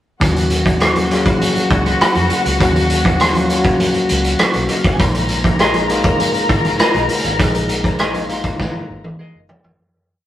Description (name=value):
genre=lush 1970s-style soul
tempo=100 BPM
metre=4/4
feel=straight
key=Eb minor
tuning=A4 = 441 Hz
part: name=muted studio string section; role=second line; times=0.2-9.4 s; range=Eb4 to Bb5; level=-22 LUFS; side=left 2 dB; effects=none
part: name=bell-like tine electric piano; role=accompaniment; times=0.2-9.8 s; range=Gb3 to Ab4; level=-20 LUFS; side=left 2 dB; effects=none
part: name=vintage muted fingered electric bass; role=bass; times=0.2-9.8 s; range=Gb1 to F2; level=-22 LUFS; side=equal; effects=none
part: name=vintage drum kit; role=drums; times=0.2-9.8 s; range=hi-hat, kick drum, rim click, snare drum, toms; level=-16 LUFS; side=equal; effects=none
part: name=congas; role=percussion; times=0.2-9.6 s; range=none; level=-27 LUFS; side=right 4 dB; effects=none
part: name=clean electric guitar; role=riff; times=5.6-9.4 s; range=Ab4 to Eb5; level=-21 LUFS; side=left 1 dB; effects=none
room=light reverb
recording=rough rehearsal-room recording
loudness=-13 LUFS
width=side -12 dB against mid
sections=0.2-9.8 verse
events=fade-out 7.4-9.8; drum fill 8.6-9.8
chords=0.2 Ebm9; 5.0 Bb7sus4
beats=| 0.21 0.81 1.41 2.01 | 2.61 3.21 3.80 4.40 | 5.00 5.60 6.20 6.80 | 7.39 7.99 8.59 9.19